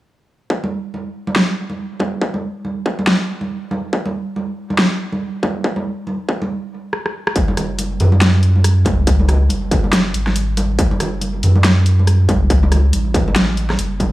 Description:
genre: deep dubstep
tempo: 140 BPM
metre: 4/4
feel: swing 60% on 16ths, half-time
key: F# minor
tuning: A4 = 439 Hz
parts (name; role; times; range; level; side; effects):
- electronic kick drum; drums; 0.5-14.1 s; none; -18 LUFS; equal; distortion, high-pass filter on kick
- congas; percussion; 0.6-14.1 s; none; -22 LUFS; right 2 dB; dub echo
- dubstep drum kit; drums; 1.4-14.1 s; hi-hat, rim click, snare drum; -18 LUFS; equal; none
- soft dub sub bass; bass; 7.4-14.1 s; F#1 to F#2; -15 LUFS; equal; none
room: little or no reverb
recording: dry, gritty hardware recording, studio reverb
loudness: -15 LUFS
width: side -17 dB against mid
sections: 0.5-7.4 A section; 7.4-14.1 B section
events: drum fill 6.9-7.4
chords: none

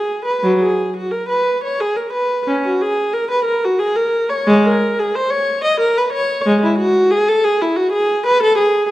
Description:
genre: classical, baroque-style suite movement for unaccompanied viola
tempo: 90 BPM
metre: 3/4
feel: rubato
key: B major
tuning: A4 = 440 Hz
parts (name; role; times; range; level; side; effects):
- dark viola; solo; 0.0-8.9 s; F#3 to D#5; -14 LUFS; equal; none
room: moderate recital hall reverb, RT60 1.6 s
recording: dark, warm production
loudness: -14 LUFS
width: side -16 dB against mid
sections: 0.0-8.9 A section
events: none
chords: none

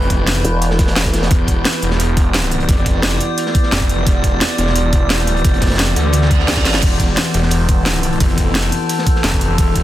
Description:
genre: dark technical drum and bass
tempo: 174 BPM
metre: 4/4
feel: straight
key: unclear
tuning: A4 = 440 Hz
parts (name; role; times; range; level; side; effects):
- metallic inharmonic drone; sustained chords; 0.0-9.8 s; E3 to D5; -20 LUFS; left 1 dB; chorus, built-in reverb, sidechain pumping
- snarling distorted saw bass; bass; 0.0-9.8 s; E1 to D2; -17 LUFS; equal; distortion, tube saturation
- crunchy breakbeat drum kit; drums; 0.0-9.8 s; hi-hat, snare drum; -27 LUFS; equal; none
- drum and bass drum kit; drums; 0.1-9.8 s; crash cymbal, hi-hat, ride cymbal, snare drum; -19 LUFS; equal; none
- electronic kick drum; drums; 0.1-9.8 s; none; -15 LUFS; equal; none
- formant-sweep wobble bass; bass; 0.4-1.3, 6.5-6.8 s; E1 to D2; -18 LUFS; equal; chorus
- reverse cymbal; sound effects; 6.3-6.8 s; none; -24 LUFS; right 6 dB; none
room: light reverb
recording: dense, heavily limited modern master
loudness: -13 LUFS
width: side -14 dB against mid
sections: 0.0-9.8 A section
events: reverse cymbal 6.3-6.8; drum fill 6.6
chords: 0.0 E5

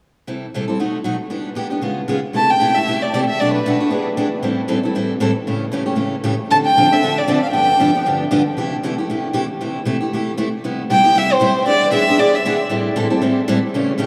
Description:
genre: jazz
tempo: 232 BPM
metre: 4/4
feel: swing 57% on 8ths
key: C major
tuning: A4 = 440 Hz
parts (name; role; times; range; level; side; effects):
- picked steel-string acoustic guitar; accompaniment; 0.3-14.1 s; G2 to A4; -20 LUFS; equal; none
- warm violin; melody; 2.4-4.0, 6.5-8.0, 10.9-12.6 s; B4 to A5; -20 LUFS; equal; none
room: wet huge ambient reverb, RT60 8.4 s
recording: in a vast, echoing space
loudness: -18 LUFS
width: mono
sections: 0.3-2.3 A section; 2.3-10.6 B section; 10.6-14.1 C section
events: none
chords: 0.3 C6; 0.8 B7; 1.3 Em7; 1.8 Db7; 2.3 C6; 3.4 Bm7; 3.9 E7; 4.4 Am7; 5.5 A7; 6.5 Dm9; 7.5 G7; 8.6 C6; 10.6 Cmaj7; 11.7 E7; 12.7 Am7

